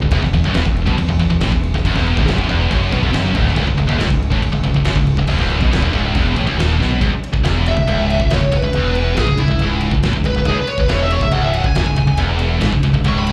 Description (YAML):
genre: heavy metal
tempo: 139 BPM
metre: 4/4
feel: straight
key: C# minor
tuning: A4 = 441 Hz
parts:
  - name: scooped high-gain guitar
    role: riff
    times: 0.0-13.3 s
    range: C#2 to B2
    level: -20 LUFS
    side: equal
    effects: distortion
  - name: growling fingered electric bass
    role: bass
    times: 0.0-13.3 s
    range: C#1 to B1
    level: -21 LUFS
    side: equal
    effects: overdrive
  - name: big rock drum kit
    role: drums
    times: 0.0-13.3 s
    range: crash cymbal, kick drum, ride cymbal, snare drum, toms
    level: -23 LUFS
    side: equal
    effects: none
  - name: high-gain lead guitar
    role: melody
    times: 7.7-13.3 s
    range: E4 to C#6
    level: -23 LUFS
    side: equal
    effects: distortion, slapback echo
room: little or no reverb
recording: live gig heard through the venue's PA, club reverb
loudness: -16 LUFS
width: mono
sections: 0.0-7.0 A section; 7.0-13.3 B section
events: drum fill 6.8; lead electric guitar solo 7.0-13.3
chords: 0.1 E5; 3.6 C#m